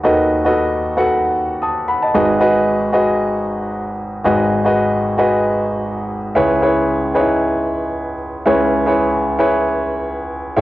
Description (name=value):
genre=pop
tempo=114 BPM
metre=4/4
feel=swing 55% on 16ths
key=unclear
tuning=A4 = 440 Hz
part: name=warm grand piano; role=solo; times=0.0-10.6 s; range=G#1 to D#6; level=-14 LUFS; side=equal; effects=cassette tape
room=moderate small room reverb, RT60 0.5 s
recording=home recording on cassette, nothing above 10.6 kHz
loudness=-14 LUFS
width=side -16 dB against mid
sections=0.0-10.6 A section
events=none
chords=0.0 B7/D#; 2.1 G#m7; 6.4 C#m7